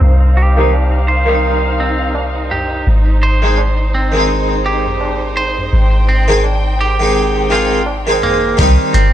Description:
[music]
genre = trip hop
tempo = 84 BPM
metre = 4/4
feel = swing 59% on 16ths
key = unclear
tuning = A4 = 440 Hz
[part]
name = harpsichord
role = accompaniment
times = 0.0-9.1 s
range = Eb3 to Eb4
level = -17 LUFS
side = equal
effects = tremolo, vintage 12-bit sampler grit, tape echo
[part]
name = warm studio string section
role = sustained chords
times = 0.0-8.6 s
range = Eb4 to G5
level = -22 LUFS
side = equal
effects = none
[part]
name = soft 808-style bass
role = bass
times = 0.0-9.1 s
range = G1 to C2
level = -14 LUFS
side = equal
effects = none
[part]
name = clean electric guitar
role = arpeggios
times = 0.4-9.1 s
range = Bb3 to C5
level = -20 LUFS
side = right 2 dB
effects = vintage 12-bit sampler grit, tape echo
[part]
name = tabla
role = percussion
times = 0.7-8.4 s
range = none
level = -27 LUFS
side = right 2 dB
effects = none
[part]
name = trip hop sampler-style drum kit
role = drums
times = 8.6-9.1 s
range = hi-hat, kick drum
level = -19 LUFS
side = equal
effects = studio reverb
[sound]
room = light reverb, small room ambience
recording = low-pass filter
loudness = -11 LUFS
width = side -11 dB against mid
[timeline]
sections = 0.0-8.6 A section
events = filter sweep 0.0-8.6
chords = 0.0 Cm; 2.9 Ab; 8.6 Cm

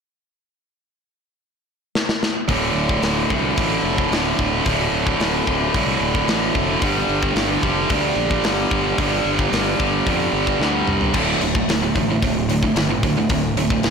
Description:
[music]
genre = heavy metal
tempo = 111 BPM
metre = 4/4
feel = straight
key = unclear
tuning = A4 = 441 Hz
[part]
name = tight metal drum kit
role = drums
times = 2.0-13.9 s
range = crash cymbal, hi-hat, kick drum, snare drum, toms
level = -23 LUFS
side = left 1 dB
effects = soft clipping on kick
[part]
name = heavy high-gain guitar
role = riff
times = 2.5-13.9 s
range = D2 to G3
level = -21 LUFS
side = right 11 dB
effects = distortion
[part]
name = tight distorted guitar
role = riff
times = 2.5-13.9 s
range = D2 to G3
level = -23 LUFS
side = left 13 dB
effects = distortion
[part]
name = fuzz fingered electric bass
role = bass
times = 2.5-13.9 s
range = D1 to F2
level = -25 LUFS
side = left 1 dB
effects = overdrive
[sound]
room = light reverb, small room ambience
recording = blown-out, overdriven recording, overdrive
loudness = -17 LUFS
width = side -6 dB against mid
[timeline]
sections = 0.3-2.5 A section; 2.5-11.1 B section; 11.1-13.9 C section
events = drum fill 1.9-2.5, 10.6-11.1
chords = 0.3 N.C.; 2.5 D5; 6.8 G5; 11.1 D5

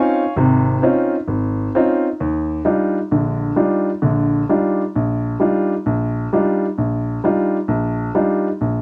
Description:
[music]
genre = jazz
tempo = 131 BPM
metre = 4/4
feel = swing 67% on 8ths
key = unclear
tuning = A4 = 439 Hz
[part]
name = warm baby grand piano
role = solo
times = 0.0-8.8 s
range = Ab1 to Db6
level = -18 LUFS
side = equal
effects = cassette tape
[sound]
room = moderate studio ambience, RT60 0.5 s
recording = home recording on cassette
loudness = -18 LUFS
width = mono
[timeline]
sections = 0.0-2.2 A section; 2.2-8.8 B section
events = none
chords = 0.0 Dbmaj9; 2.2 Ebmaj9

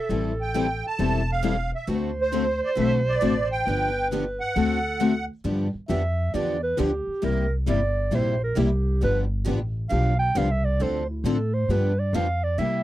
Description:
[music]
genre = acoustic string swing (jazz manouche)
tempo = 134 BPM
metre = 4/4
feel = swing 64% on 8ths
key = G mixolydian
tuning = A4 = 440 Hz
[part]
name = musette accordion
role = melody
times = 0.0-5.3 s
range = C5 to A5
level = -26 LUFS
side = right 2 dB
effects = none
[part]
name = mellow clarinet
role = second line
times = 0.0-12.8 s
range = E4 to G5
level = -28 LUFS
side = right 2 dB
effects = none
[part]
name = picked steel-string acoustic guitar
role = accompaniment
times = 0.1-12.8 s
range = C3 to A4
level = -27 LUFS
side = left 6 dB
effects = none
[part]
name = picked steel-string acoustic guitar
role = accompaniment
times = 0.1-12.8 s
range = C3 to A4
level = -31 LUFS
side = right 4 dB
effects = none
[part]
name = upright bass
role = bass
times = 0.1-12.8 s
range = E1 to C3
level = -26 LUFS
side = equal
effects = none
[sound]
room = little or no reverb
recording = dry, close 1970s-style studio recording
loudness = -22 LUFS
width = side -14 dB against mid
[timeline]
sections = 0.0-5.4 A section; 5.4-12.8 B section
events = clarinet solo 5.4-12.8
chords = 0.0 Am7; 1.9 D7; 3.7 G7; 4.6 D7; 5.4 G7; 7.2 C7; 9.0 G7; 10.8 Dm7; 11.7 G7

